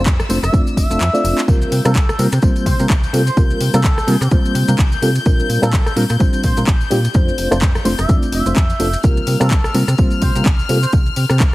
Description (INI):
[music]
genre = filtered disco house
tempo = 127 BPM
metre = 4/4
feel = swing 57% on 16ths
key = C mixolydian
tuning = A4 = 440 Hz
[part]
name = rich chamber string section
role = sustained chords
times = 0.0-11.5 s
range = E6 to G6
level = -27 LUFS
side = left 6 dB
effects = sidechain pumping
[part]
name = slap-like FM bass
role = bass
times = 0.0-11.5 s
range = F1 to C3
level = -18 LUFS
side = equal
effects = sidechain pumping
[part]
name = electronic kick drum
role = drums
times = 0.1-11.5 s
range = none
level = -14 LUFS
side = equal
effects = overdrive, studio reverb
[part]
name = house drum kit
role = drums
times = 0.1-11.5 s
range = handclaps, hi-hat, rim click, tambourine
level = -24 LUFS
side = left 1 dB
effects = overdrive, sidechain pumping on perc, studio reverb, sidechain pumping on hats
[part]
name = maracas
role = percussion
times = 0.1-11.5 s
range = none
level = -32 LUFS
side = right 1 dB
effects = sidechain pumping on perc
[part]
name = reed electric piano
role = accompaniment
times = 0.3-10.8 s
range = G3 to D5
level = -19 LUFS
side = equal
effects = overdrive, fast tremolo, phaser, sidechain pumping
[part]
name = muted trumpet section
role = melody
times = 0.4-10.9 s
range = A4 to E5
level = -26 LUFS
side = right 1 dB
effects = sidechain pumping, dub echo
[sound]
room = small room ambience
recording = heavily compressed radio sound, multiband compression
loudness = -13 LUFS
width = side -18 dB against mid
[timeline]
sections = 0.0-11.5 A section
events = kick drops out 1.0-1.5; drum fill 1.0-1.5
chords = 0.0 F6; 1.5 C7sus4; 5.3 Bb69; 7.1 F6; 9.0 C7sus4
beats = 0.06 0.53 1.01 | 1.48 1.95 2.42 2.90 | 3.37 3.84 4.31 4.79 | 5.26 5.73 6.20 6.68 | 7.15 7.62 8.09 8.56 | 9.04 9.51 9.98 10.46 | 10.93 11.40